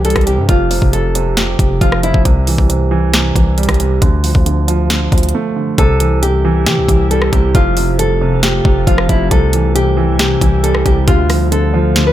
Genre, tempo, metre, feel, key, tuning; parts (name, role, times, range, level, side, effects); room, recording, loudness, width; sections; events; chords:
hip hop, trap; 136 BPM; 4/4; half-time; C major; A4 = 439 Hz
nylon-string guitar; melody; 0.0-2.2, 5.8-12.1 s; E4 to B4; -18 LUFS; left 2 dB; low-pass filter, ping-pong delay
dark baby grand piano; accompaniment; 0.0-12.1 s; F2 to A3; -16 LUFS; right 3 dB; low-pass filter
distorted 808-style bass; bass; 0.0-12.1 s; F1 to E3; -16 LUFS; equal; distortion
trap drum kit; drums; 0.0-12.1 s; hi-hat, kick drum, rim click, snare drum; -14 LUFS; equal
glassy FM pad; sustained chords; 6.3-12.1 s; C3 to F4; -23 LUFS; left 5 dB; ensemble chorus, built-in reverb
little or no reverb; -11 LUFS; side -12 dB against mid
0.0-5.8 A section; 5.8-12.1 B section
break 5.3-5.8
0.5 F; 2.3 C; 4.0 Dm; 5.8 C; 7.5 F; 9.3 C; 11.1 Dm